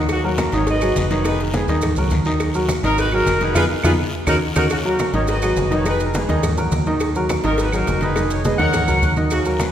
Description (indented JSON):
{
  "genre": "latin, salsa",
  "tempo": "208 BPM",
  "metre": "4/4",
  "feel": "straight",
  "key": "Eb minor",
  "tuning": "A4 = 439 Hz",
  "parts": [
    { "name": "warm baby grand piano", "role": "accompaniment", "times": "0.0-9.7 s", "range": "Eb3 to Eb5", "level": "-21 LUFS", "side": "equal", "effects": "none" },
    { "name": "deep dub fingered electric bass", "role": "bass", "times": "0.0-9.7 s", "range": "F1 to F2", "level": "-22 LUFS", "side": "equal", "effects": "none" },
    { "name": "clear horn section", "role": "melody", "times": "0.1-9.7 s", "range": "Bb3 to Gb5", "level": "-22 LUFS", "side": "equal", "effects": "none" },
    { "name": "claves", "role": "percussion", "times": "0.1-9.7 s", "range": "none", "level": "-35 LUFS", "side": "right 2 dB", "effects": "none" },
    { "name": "congas", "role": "percussion", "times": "0.1-9.7 s", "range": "none", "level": "-27 LUFS", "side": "equal", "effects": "none" },
    { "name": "cowbell", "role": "percussion", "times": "0.1-9.7 s", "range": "none", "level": "-30 LUFS", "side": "left 3 dB", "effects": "none" },
    { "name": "guiro", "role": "percussion", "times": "0.1-4.6, 9.3-9.7 s", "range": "none", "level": "-35 LUFS", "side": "left 3 dB", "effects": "none" },
    { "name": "maracas", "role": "percussion", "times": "0.1-9.7 s", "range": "none", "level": "-35 LUFS", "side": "right 5 dB", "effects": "none" }
  ],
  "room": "wet concert hall reverb, RT60 2.2 s",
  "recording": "recorded in a church or concert hall",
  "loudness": "-16 LUFS",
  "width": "side -10 dB against mid",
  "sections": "0.0-4.7 A section; 4.7-9.7 A section",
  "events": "band accent 3.6-4.7; drum fill 3.8-4.7",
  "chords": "0.0 Ebm7; 0.7 Abm7; 1.2 Fm7b5; 1.8 Ebm; 3.0 Ab5; 3.6 F7(b5, no3); 4.1 Ebm7; 5.3 Abm7; 5.9 Fm7b5; 6.4 Ebm; 7.6 Ab5; 8.2 Fm7b5; 8.7 Ebm7",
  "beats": "| 0.10 0.39 0.67 0.96 | 1.25 1.54 1.83 2.11 | 2.40 2.69 2.98 3.27 | 3.55 3.84 4.13 4.42 | 4.71 4.99 5.28 5.57 | 5.86 6.14 6.43 6.72 | 7.01 7.30 7.58 7.87 | 8.16 8.45 8.73 9.02 | 9.31 9.60"
}